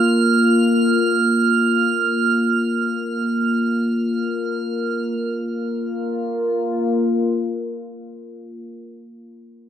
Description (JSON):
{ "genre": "ambient", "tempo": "free time", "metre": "none", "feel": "none", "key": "unclear", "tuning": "A4 = 440 Hz", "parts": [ { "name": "analog drone", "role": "drone", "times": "0.0-8.6 s", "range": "Bb3 to F4", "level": "-19 LUFS", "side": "left 1 dB", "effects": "chorus" }, { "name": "drifting glass-harmonics texture", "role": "texture", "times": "0.0-5.2 s", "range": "F6", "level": "-22 LUFS", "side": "right 8 dB", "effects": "chorus, built-in reverb" } ], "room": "wet spring reverb, RT60 2.2 s", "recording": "none", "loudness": "-17 LUFS", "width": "side -9 dB against mid", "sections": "0.0-5.2 A section; 5.2-7.8 B section", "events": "none", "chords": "0.0 Bb5", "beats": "free time" }